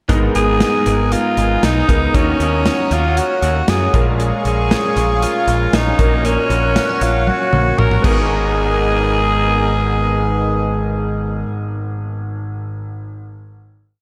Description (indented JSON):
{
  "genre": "1980s-style pop",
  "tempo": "117 BPM",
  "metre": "4/4",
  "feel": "straight",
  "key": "G# dorian",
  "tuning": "A4 = 440 Hz",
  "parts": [
    { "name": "clear concert grand piano", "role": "accompaniment", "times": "0.1-14.0 s", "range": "G#1 to A#4", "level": "-25 LUFS", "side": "equal", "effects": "analog chorus" },
    { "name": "phased analog pad", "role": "sustained chords", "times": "0.7-11.4 s", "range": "B3 to D#6", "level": "-26 LUFS", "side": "equal", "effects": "phaser, chorus" },
    { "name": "direct-recorded clean electric guitar", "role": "riff", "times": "0.1-11.7 s", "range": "G#3 to A#4", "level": "-28 LUFS", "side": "equal", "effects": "ensemble chorus, delay" },
    { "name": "modern bright picked electric bass", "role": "bass", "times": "0.1-11.4 s", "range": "G#1 to F#2", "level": "-21 LUFS", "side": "equal", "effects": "none" },
    { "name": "modern studio drum kit", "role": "drums", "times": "0.1-8.2 s", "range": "crash cymbal, hi-hat, kick drum, snare drum, toms", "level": "-22 LUFS", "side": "equal", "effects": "none" },
    { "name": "raspy alto saxophone", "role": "melody", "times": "0.4-11.4 s", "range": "C#4 to A#4", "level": "-21 LUFS", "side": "equal", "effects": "delay" }
  ],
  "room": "wet lush hall reverb, RT60 1.9 s, small room ambience",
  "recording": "dreamy mix soaked in reverb",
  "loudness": "-16 LUFS",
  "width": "mono",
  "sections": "0.1-8.3 verse; 8.3-12.4 final hit",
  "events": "drum fill 7.3-8.3",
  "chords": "0.1 G#madd9; 2.1 D#m7; 3.9 A#m7; 6.0 F#/A#; 8.0 G#madd9"
}